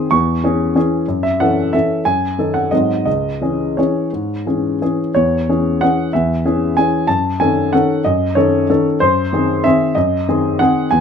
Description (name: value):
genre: classical, piano waltz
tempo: 166-199 BPM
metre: 3/4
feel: rubato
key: C# minor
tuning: A4 = 440 Hz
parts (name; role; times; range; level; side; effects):
- warm grand piano; solo; 0.0-11.0 s; C#2 to D#6; -14 LUFS; left 1 dB; none
room: light reverb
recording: none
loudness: -14 LUFS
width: side -7 dB against mid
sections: 0.0-5.2 A section; 5.2-11.0 B section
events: none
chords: 0.1 C#m/E; 1.1 F#m7; 2.1 D#dim/F#; 2.7 G#7; 3.1 C#m; 5.2 C#m/E; 7.1 D#m7b5/F#; 9.0 G#7/F#